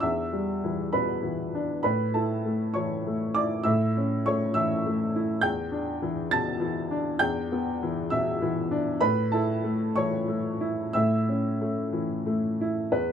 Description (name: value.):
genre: neoclassical minimalist piano.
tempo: 59-69 BPM (dotted quarters).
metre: 6/8.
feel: rubato.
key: unclear.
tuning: A4 = 440 Hz.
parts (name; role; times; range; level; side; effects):
clear upright piano; solo; 0.0-13.1 s; E2 to A6; -24 LUFS; equal; none.
room: moderate booth ambience, RT60 0.2 s.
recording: none.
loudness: -24 LUFS.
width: side -8 dB against mid.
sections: 0.0-12.9 A section.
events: none.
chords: 0.0 Em7; 1.9 A; 5.4 Em7; 9.0 A.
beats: | 0.01 0.94 | 1.85 2.77 | 3.67 4.57 | 5.44 6.33 | 7.22 8.12 | 9.02 9.96 | 10.93 11.93 | 12.91.